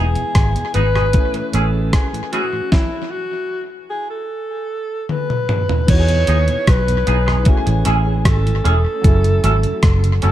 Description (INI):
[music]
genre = lovers rock reggae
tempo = 76 BPM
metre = 4/4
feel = straight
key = E major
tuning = A4 = 441 Hz
[part]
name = warm alto saxophone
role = melody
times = 0.0-10.2 s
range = E4 to C#5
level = -22 LUFS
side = equal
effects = tape echo
[part]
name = clear concert grand piano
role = accompaniment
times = 0.0-10.3 s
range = E3 to G#5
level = -27 LUFS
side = left 2 dB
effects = none
[part]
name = mellow tonewheel organ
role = accompaniment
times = 0.0-10.3 s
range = E2 to G#4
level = -28 LUFS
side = right 3 dB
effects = slow rotary speaker, tape echo
[part]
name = twangy electric guitar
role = stabs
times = 0.0-10.3 s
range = B3 to A4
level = -24 LUFS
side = right 2 dB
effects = lush chorus
[part]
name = vintage muted fingered electric bass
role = bass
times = 0.0-10.3 s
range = E1 to E2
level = -16 LUFS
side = equal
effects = none
[part]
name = clean 12-bit digital drum machine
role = drums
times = 0.2-10.3 s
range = crash cymbal, hi-hat, kick drum, rim click, snare drum, toms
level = -17 LUFS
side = equal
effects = none
[sound]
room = little or no reverb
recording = dark, warm production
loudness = -14 LUFS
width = side -12 dB against mid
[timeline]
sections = 0.0-5.9 A section; 5.9-10.3 B section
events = stop 2.7-5.9; drum fill 5.1-5.9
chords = 0.0 Emaj7; 1.1 Amaj7; 2.7 N.C.; 5.9 Emaj7; 7.5 Amaj7; 9.0 F#m7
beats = 0.35 1.14 1.93 | 2.72 3.51 4.31 5.10 | 5.89 6.68 7.47 8.26 | 9.05 9.84